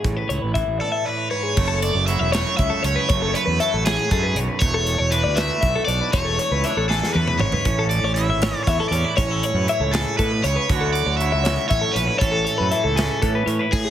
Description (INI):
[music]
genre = math rock and midwest emo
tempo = 79 BPM (dotted quarters)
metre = 6/8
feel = straight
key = A major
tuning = A4 = 440 Hz
[part]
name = twangy electric guitar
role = accompaniment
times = 0.0-13.9 s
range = E2 to F#4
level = -27 LUFS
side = right 6 dB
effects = none
[part]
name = twelve-string electric guitar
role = arpeggios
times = 0.0-13.9 s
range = G#4 to E5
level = -25 LUFS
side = left 6 dB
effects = spring reverb, plate reverb
[part]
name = fuzz fingered electric bass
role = bass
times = 0.0-13.8 s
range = E1 to A2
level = -24 LUFS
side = equal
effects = overdrive
[part]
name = modern studio drum kit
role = drums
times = 0.0-13.8 s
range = crash cymbal, hi-hat, kick drum, snare drum, toms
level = -25 LUFS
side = equal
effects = none
[part]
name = cranked stack guitar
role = melody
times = 0.8-13.9 s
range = G#4 to E5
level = -24 LUFS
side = right 2 dB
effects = overdrive, phaser
[sound]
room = light reverb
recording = heavily compressed radio sound, multiband compression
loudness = -18 LUFS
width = side -10 dB against mid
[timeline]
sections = 0.0-1.6 A section; 1.6-13.7 B section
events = drum fill 6.9-7.7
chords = 0.0 Amaj9; 1.6 F#m7; 4.6 E7sus4; 7.7 Amaj7; 10.7 Dmaj9; 12.2 Amaj7